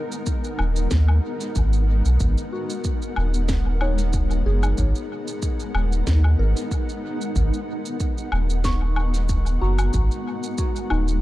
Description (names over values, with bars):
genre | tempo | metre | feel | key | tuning
ambient dub | 93 BPM | 4/4 | swing 55% on 16ths | G# minor | A4 = 438 Hz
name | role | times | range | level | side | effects
granular cloud pad | sustained chords | 0.0-11.2 s | G#3 to F#5 | -29 LUFS | left 1 dB | built-in reverb
electronic shaker, woodblock and snare drum | drums | 0.1-11.2 s | none | -32 LUFS | left 1 dB | overdrive, dub echo
electronic kick drum | drums | 0.3-10.7 s | none | -25 LUFS | equal | none
soft dub sub bass | bass | 0.6-11.2 s | D#1 to D#2 | -19 LUFS | equal | tube saturation
soft synth bell | arpeggios | 2.5-11.2 s | D#4 to C#6 | -32 LUFS | left 1 dB | chorus, phaser, dub echo
room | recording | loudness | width
digital ambience | dark, warm production | -20 LUFS | side -16 dB against mid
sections
0.0-11.2 A section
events
none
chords
0.0 G#m7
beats
0.26 0.91 1.55 | 2.20 2.85 3.49 4.13 | 4.78 5.42 6.07 6.72 | 7.36 8.01 8.65 9.30 | 9.94 10.59